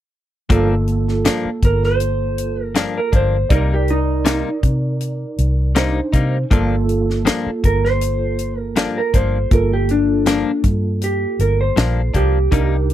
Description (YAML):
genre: straight-eighth soul blues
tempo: 80 BPM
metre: 4/4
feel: straight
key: G minor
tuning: A4 = 440 Hz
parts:
  - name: mellow tine electric piano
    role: accompaniment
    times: 0.5-12.9 s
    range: Bb3 to D5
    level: -24 LUFS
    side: right 4 dB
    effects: ensemble chorus
  - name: direct-recorded clean electric guitar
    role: stabs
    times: 0.5-12.8 s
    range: G2 to Eb4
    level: -22 LUFS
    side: left 6 dB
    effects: none
  - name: vintage muted fingered electric bass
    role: bass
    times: 0.5-12.9 s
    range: G1 to C3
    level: -19 LUFS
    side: equal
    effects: none
  - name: tight funk drum kit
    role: drums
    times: 0.5-12.9 s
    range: hi-hat, kick drum, snare drum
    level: -18 LUFS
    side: equal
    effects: none
  - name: clean lap steel guitar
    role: melody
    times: 1.6-12.9 s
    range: D4 to C5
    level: -20 LUFS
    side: right 1 dB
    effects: none
room: little or no reverb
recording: dry, close 1970s-style studio recording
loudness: -15 LUFS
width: side -12 dB against mid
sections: 0.5-12.9 A section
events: none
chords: 0.5 Gm7; 3.5 Cm7; 6.5 Gm7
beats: | 0.50 1.25 2.00 2.75 | 3.50 4.25 5.00 5.76 | 6.51 7.26 8.01 8.76 | 9.51 10.26 11.01 11.77 | 12.52